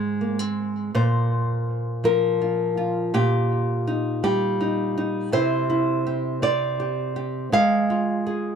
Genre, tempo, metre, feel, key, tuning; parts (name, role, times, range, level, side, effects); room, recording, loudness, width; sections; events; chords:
folk, solo fingerstyle acoustic guitar; 55 BPM (dotted quarters); 6/8; straight; Bb mixolydian; A4 = 440 Hz
nylon-string guitar; solo; 0.0-8.6 s; Ab2 to F5; -21 LUFS; equal
little or no reverb; dry, close 1970s-style studio recording; -21 LUFS; side -7 dB against mid
0.9-8.6 A section
0.0 Ab; 0.9 Bb5; 3.1 Eb/Bb; 5.3 Cadd9; 7.5 Ab5